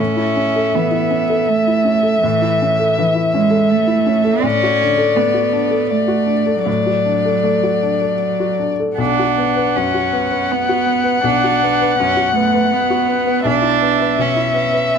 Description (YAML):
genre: neoclassical piano and strings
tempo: 81 BPM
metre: 3/4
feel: rubato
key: A major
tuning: A4 = 440 Hz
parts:
  - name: dark violin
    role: melody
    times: 0.0-15.0 s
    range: D5 to F#5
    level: -18 LUFS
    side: left 3 dB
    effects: none
  - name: warm cello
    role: second line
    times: 0.0-15.0 s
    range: E3 to D4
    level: -18 LUFS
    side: right 7 dB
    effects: none
  - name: felt-muted upright piano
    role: accompaniment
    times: 0.0-15.0 s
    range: B1 to B4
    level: -20 LUFS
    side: left 3 dB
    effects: none
room: light reverb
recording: none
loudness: -14 LUFS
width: side -7 dB against mid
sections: 0.0-15.0 A section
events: none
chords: 0.0 A; 4.4 D/A; 9.0 Bm; 13.5 E5/B